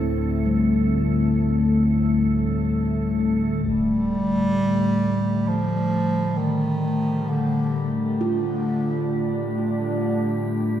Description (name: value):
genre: dark ambient drone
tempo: free time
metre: none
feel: none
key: D minor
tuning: A4 = 439 Hz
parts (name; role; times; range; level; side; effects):
- sweeping resonant pad; sustained chords; 0.0-10.8 s; D3 to D4; -24 LUFS; left 2 dB; chorus
- quartz singing bowl; arpeggios; 0.0-10.8 s; D3 to F4; -28 LUFS; right 1 dB; dub echo
- analog drone; drone; 0.0-10.8 s; D2 to A2; -26 LUFS; equal; chorus
- icy glass pad; texture; 0.0-10.8 s; G4 to A4; -37 LUFS; right 3 dB; chorus, built-in reverb, shimmer reverb
- mellow bass clarinet; melody; 3.7-9.5 s; D3 to G3; -25 LUFS; right 1 dB; shimmer reverb, dub echo
- impact; percussion; 3.7-3.8 s; none; -37 LUFS; right 1 dB; low-pass filter on sfx
room: wet echo chamber reverb, RT60 2.4 s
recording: echo-heavy mix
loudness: -20 LUFS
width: side -10 dB against mid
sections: 0.0-3.7 A section; 3.7-10.8 B section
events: fade-in on ambient pad 3.7-10.8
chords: 0.0 D5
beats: free time